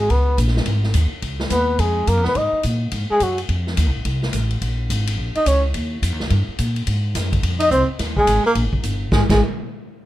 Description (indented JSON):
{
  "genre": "jazz, small-group swing and bop",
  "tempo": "213 BPM",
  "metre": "4/4",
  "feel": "swing 62% on 8ths",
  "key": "unclear",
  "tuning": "A4 = 440 Hz",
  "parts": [
    { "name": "trumpet with bucket mute", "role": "melody", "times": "0.0-9.4 s", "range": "Gb4 to Eb5", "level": "-20 LUFS", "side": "left 1 dB", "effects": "plate reverb" },
    { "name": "warm tenor saxophone", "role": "second line", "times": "0.0-9.4 s", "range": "Gb3 to Eb4", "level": "-24 LUFS", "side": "right 4 dB", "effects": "none" },
    { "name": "upright bass", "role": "bass", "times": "0.0-9.4 s", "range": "Eb1 to Bb2", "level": "-20 LUFS", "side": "equal", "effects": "none" },
    { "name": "swinging big-band drum kit", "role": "drums", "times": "0.1-9.3 s", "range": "crash cymbal, hi-hat, kick drum, ride cymbal, snare drum", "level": "-25 LUFS", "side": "equal", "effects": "none" }
  ],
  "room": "light reverb",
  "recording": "close, detailed microphones",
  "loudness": "-17 LUFS",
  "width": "side -14 dB against mid",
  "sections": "0.0-9.1 A section",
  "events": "none",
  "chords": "0.1 Db7; 2.4 Ab5; 3.5 F; 4.6 Bbm7; 5.7 Eb; 6.9 Gbsus2; 7.4 F5; 8.0 Eb; 9.1 N.C."
}